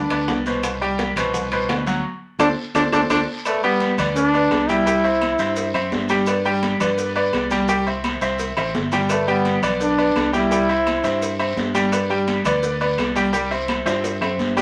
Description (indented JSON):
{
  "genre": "latin, salsa",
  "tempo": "170 BPM",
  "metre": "4/4",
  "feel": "straight",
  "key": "G major",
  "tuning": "A4 = 440 Hz",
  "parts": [
    { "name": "bright trombone", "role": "melody", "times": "0.0-5.7, 9.1-11.4 s", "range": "A3 to E4", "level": "-22 LUFS", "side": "equal", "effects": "none" },
    { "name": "bright concert grand piano", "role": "accompaniment", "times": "0.0-14.6 s", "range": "B2 to G5", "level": "-24 LUFS", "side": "equal", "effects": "none" },
    { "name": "fingered electric bass", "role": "bass", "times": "0.0-14.6 s", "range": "G1 to G2", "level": "-32 LUFS", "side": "equal", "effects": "none" },
    { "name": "bongos and cowbell", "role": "percussion", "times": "0.1-14.6 s", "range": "none", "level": "-35 LUFS", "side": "equal", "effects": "none" },
    { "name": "claves", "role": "percussion", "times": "0.1-14.4 s", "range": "none", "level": "-37 LUFS", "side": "equal", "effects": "none" },
    { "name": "congas", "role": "percussion", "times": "0.1-14.6 s", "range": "none", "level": "-31 LUFS", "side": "equal", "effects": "none" },
    { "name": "maracas", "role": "percussion", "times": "0.1-14.6 s", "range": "none", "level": "-41 LUFS", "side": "equal", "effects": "none" },
    { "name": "timbales and agogo bells", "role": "percussion", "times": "0.1-14.6 s", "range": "none", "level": "-32 LUFS", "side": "equal", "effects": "none" },
    { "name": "guiro", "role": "percussion", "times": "0.3-14.6 s", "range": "none", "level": "-36 LUFS", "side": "equal", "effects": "none" }
  ],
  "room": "wet studio reverb, RT60 0.5 s",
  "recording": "none",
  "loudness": "-20 LUFS",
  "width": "mono",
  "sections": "0.0-3.5 A section; 3.5-14.6 B section",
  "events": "band accent 2.0-3.5; drum fill 2.9-3.5, 8.6-9.1, 13.9-14.6",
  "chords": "0.0 G (rootless); 0.6 C5; 2.0 D5; 3.5 G; 4.9 C; 6.3 G; 7.7 C; 9.1 G; 10.5 C; 11.9 G; 13.3 C"
}